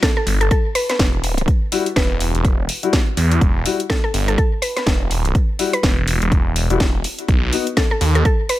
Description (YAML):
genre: bass house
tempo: 124 BPM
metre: 4/4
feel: swing 59% on 16ths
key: E harmonic minor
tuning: A4 = 440 Hz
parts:
  - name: mallet-like synth pluck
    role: melody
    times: 0.0-8.6 s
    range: A4 to B4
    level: -23 LUFS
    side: equal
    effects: chorus, digital delay
  - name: electronic kick drum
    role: drums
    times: 0.0-8.4 s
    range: none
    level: -18 LUFS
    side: equal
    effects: none
  - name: house drum kit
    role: drums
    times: 0.0-8.6 s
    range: hi-hat, snare drum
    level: -23 LUFS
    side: equal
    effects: none
  - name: phased detuned saw bass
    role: bass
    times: 0.3-8.2 s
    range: E1 to E2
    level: -18 LUFS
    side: equal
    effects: phaser, sidechain pumping
  - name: dark grand piano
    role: stabs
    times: 1.7-7.6 s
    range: G3 to F#4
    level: -24 LUFS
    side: left 6 dB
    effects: sidechain pumping, digital delay
room: digital ambience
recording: none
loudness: -15 LUFS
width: side -15 dB against mid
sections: 0.0-8.6 A section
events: none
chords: 0.0 Em; 7.3 B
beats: 0.03 0.51 0.99 | 1.48 1.96 2.44 2.93 | 3.41 3.90 4.38 4.86 | 5.35 5.83 6.32 6.80 | 7.28 7.77 8.25